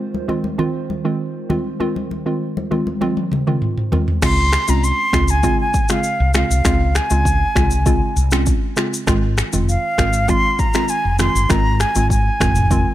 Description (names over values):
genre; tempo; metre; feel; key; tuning
afrobeats; 99 BPM; 4/4; straight; unclear; A4 = 442 Hz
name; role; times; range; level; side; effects
hollow square pluck; accompaniment; 0.0-12.9 s; Db3 to F4; -21 LUFS; right 2 dB; chorus
hollow soft pad; sustained chords; 0.0-4.2 s; Eb3 to C5; -30 LUFS; right 2 dB; chorus
congas; percussion; 0.1-4.1 s; none; -26 LUFS; left 2 dB; none
afro-pop drum kit; drums; 3.0-12.9 s; crash cymbal, finger snaps, kick drum, rim click, shaker, toms; -19 LUFS; equal; none
silver concert flute; melody; 4.2-12.9 s; F5 to C6; -20 LUFS; right 1 dB; ping-pong delay
woody fretless electric bass; bass; 4.2-12.8 s; F1 to Db2; -18 LUFS; equal; none
room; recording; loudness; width
digital ambience; none; -15 LUFS; side -14 dB against mid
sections
0.0-4.2 A section; 4.2-12.9 B section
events
drum fill 3.0-4.2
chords
0.0 Ab6; 4.2 Dbmaj7; 9.1 Ab6